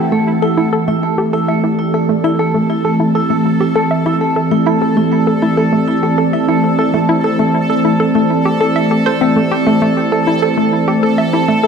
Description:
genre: ambient, sequencer-driven space music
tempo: 99 BPM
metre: 4/4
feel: straight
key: A minor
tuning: A4 = 440 Hz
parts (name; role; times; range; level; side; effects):
- sweeping resonant pad; sustained chords; 0.0-11.7 s; E3 to D5; -15 LUFS; right 1 dB; chorus
- hollow square pluck; riff; 0.0-11.7 s; A3 to E5; -17 LUFS; left 1 dB; chorus, analog delay
- bubbling stepped-filter texture; texture; 0.0-11.7 s; A4; -22 LUFS; right 2 dB; chorus, built-in reverb
- vibraphone with medium hard mallets; arpeggios; 0.1-11.6 s; A3 to E4; -18 LUFS; right 2 dB; auto-pan, analog delay
room: wet plate reverb, RT60 3.4 s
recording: none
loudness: -12 LUFS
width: side -6 dB against mid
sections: 0.0-11.7 A section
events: none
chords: 0.0 Am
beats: | 0.12 0.73 1.33 1.94 | 2.55 3.15 3.76 4.36 | 4.97 5.58 6.18 6.79 | 7.39 8.00 8.61 9.21 | 9.82 10.42 11.03 11.64

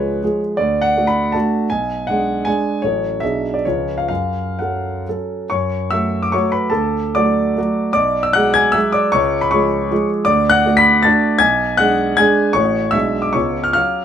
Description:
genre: classical, romantic triple-time dance for piano with dotted rhythms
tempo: 119-169 BPM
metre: 3/4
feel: rubato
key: F# minor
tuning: A4 = 441 Hz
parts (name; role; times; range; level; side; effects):
- warm concert grand piano; solo; 0.0-14.0 s; A1 to B6; -14 LUFS; equal; none
room: light reverb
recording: minimal, uncompressed stereo recording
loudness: -14 LUFS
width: side -9 dB against mid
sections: 0.0-5.5 A section; 5.5-14.0 A section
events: none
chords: 0.0 C#; 0.6 D; 1.7 G#dim/B; 2.8 F#m/A; 3.2 G#m7b5/B; 3.7 C#7; 4.1 F#m; 6.7 D; 8.0 G#m7b5/B; 9.1 C#; 10.3 D; 11.4 G#dim/B; 12.6 F#m/A; 12.9 G#m7b5/B; 13.3 C#7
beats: 0.22 | 0.59 0.97 1.35 | 1.71 2.09 2.47 | 2.83 3.22 3.65 | 4.09 4.58 5.06 | 5.50 5.92 6.33 | 6.72 7.17 7.58 | 7.95 8.35 8.75 | 9.14 9.53 9.92 | 10.28 10.66 11.05 | 11.41 11.80 12.19 | 12.55 12.94 13.35 | 13.76

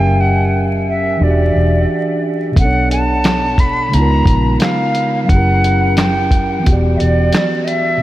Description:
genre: lo-fi hip hop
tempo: 88 BPM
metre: 4/4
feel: swing 62% on 16ths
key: unclear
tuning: A4 = 444 Hz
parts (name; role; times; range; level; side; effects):
- silver concert flute; melody; 0.0-8.0 s; D5 to B5; -18 LUFS; equal; low-pass filter, diffuse ambient delay
- mellow tine electric piano; accompaniment; 0.0-8.0 s; B2 to E5; -17 LUFS; right 1 dB; low-pass filter
- vintage muted fingered electric bass; bass; 0.0-7.3 s; E1 to C#2; -16 LUFS; equal; none
- lo-fi sampler-style drum kit; drums; 2.6-7.9 s; handclaps, hi-hat, kick drum, snare drum; -16 LUFS; equal; none
room: moderate huge ambient reverb, RT60 7.7 s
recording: dreamy mix soaked in reverb, vinyl crackle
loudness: -12 LUFS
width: side -15 dB against mid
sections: 0.0-8.0 A section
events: none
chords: 0.0 F#7b9; 1.2 Em9; 2.6 Bm9; 3.9 C#13; 5.3 F#7b9; 6.7 Em9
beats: 0.52 1.20 1.88 | 2.56 3.25 3.93 4.61 | 5.29 5.97 6.65 7.34 | 8.02

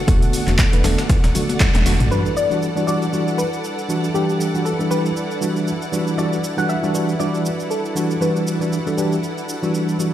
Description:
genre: deep house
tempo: 118 BPM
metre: 4/4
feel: swing 56% on 16ths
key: E minor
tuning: A4 = 439 Hz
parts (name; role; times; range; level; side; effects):
- hollow soft pad; sustained chords; 0.0-10.1 s; G3 to F#5; -30 LUFS; right 1 dB; chorus, vintage 12-bit sampler grit, sidechain pumping
- rich studio string section; texture; 0.0-10.1 s; E4 to F#5; -30 LUFS; equal; sidechain pumping
- warm studio violin section; texture; 0.0-2.1 s; F#5; -39 LUFS; left 2 dB; none
- tine electric piano; stabs; 0.1-10.1 s; D3 to B4; -21 LUFS; equal; overdrive, fast stereo tremolo, sidechain pumping, low-pass filter, tape echo
- woody FM bass; bass; 0.1-2.1 s; D1 to A1; -19 LUFS; equal; sidechain pumping
- breakbeat sampler-style drum kit; drums; 0.1-2.0 s; hi-hat, snare drum; -31 LUFS; equal; none
- electronic kick drum; drums; 0.1-1.7 s; none; -16 LUFS; equal; overdrive
- punchy analog drum machine; drums; 0.1-10.1 s; handclaps, hi-hat, shaker, toms; -27 LUFS; equal; overdrive
- congas and bongos; percussion; 0.1-1.8 s; none; -31 LUFS; left 2 dB; none
- soft round pluck; melody; 2.1-9.2 s; G4 to F#5; -25 LUFS; left 2 dB; analog chorus, tape echo
room: light reverb, digital ambience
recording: played on a big sound system in a bare room, stone room reverb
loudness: -17 LUFS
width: side -12 dB against mid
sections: 0.0-2.1 A section; 2.1-10.1 B section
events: drum fill 1.6-2.1; band accent 1.6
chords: 0.0 Bm7; 2.1 Em9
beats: | 0.08 0.59 1.10 1.60 | 2.11 2.62 3.13 3.64 | 4.15 4.66 5.16 5.67 | 6.18 6.69 7.20 7.71 | 8.21 8.72 9.23 9.74

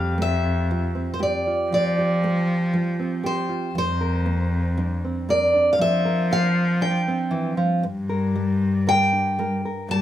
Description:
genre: acoustic folk-pop ballad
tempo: 59 BPM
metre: 4/4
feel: straight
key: unclear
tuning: A4 = 439 Hz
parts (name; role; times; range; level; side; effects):
- picked steel-string acoustic guitar; melody; 0.0-10.0 s; C5 to A5; -23 LUFS; equal; none
- nylon-string guitar; accompaniment; 0.0-10.0 s; G2 to Bb4; -28 LUFS; right 2 dB; none
- warm cello; bass; 0.0-10.0 s; F2 to G3; -23 LUFS; left 1 dB; none
room: light reverb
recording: minimal, uncompressed stereo recording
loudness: -20 LUFS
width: side -12 dB against mid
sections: 0.0-10.0 A section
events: none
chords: 0.0 Fadd9; 3.8 Bbadd9/F; 7.8 Gm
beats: 0.68 1.71 2.73 | 3.75 4.78 5.79 6.82 | 7.84 8.86 9.89

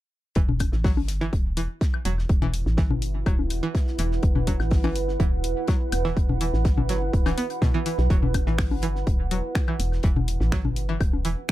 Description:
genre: minimal techno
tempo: 124 BPM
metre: 4/4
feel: straight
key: E minor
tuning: A4 = 440 Hz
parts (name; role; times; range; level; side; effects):
- string-like resonator pluck; riff; 0.4-11.3 s; B2 to B3; -30 LUFS; right 1 dB; chorus, sidechain pumping, tape echo
- woody FM bass; bass; 0.4-11.4 s; D1 to B1; -26 LUFS; equal; sidechain pumping
- damped 70s drum kit; drums; 0.4-11.5 s; hi-hat, snare drum; -43 LUFS; left 3 dB; sidechain pumping on hats, high-pass filter on hats, high-pass filter on snare, high-pass filter on room
- electronic kick drum; drums; 0.4-11.5 s; none; -23 LUFS; equal; none
- deep dark ambient pad; texture; 2.6-11.5 s; E4 to F#5; -32 LUFS; right 4 dB; chorus, built-in reverb, sidechain pumping
- electronic toms, bongos and woodblock; percussion; 0.5-11.2 s; none; -29 LUFS; left 5 dB; overdrive, digital delay
- house drum kit; drums; 0.6-11.5 s; finger snaps, hi-hat; -33 LUFS; left 2 dB; none
room: little or no reverb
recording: none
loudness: -21 LUFS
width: side -15 dB against mid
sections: 0.4-11.5 A section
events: none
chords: 0.4 Em7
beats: | 0.36 0.84 1.33 1.81 | 2.30 2.78 3.26 3.75 | 4.23 4.71 5.20 5.68 | 6.17 6.65 7.13 7.62 | 8.10 8.59 9.07 9.55 | 10.04 10.52 11.01 11.49

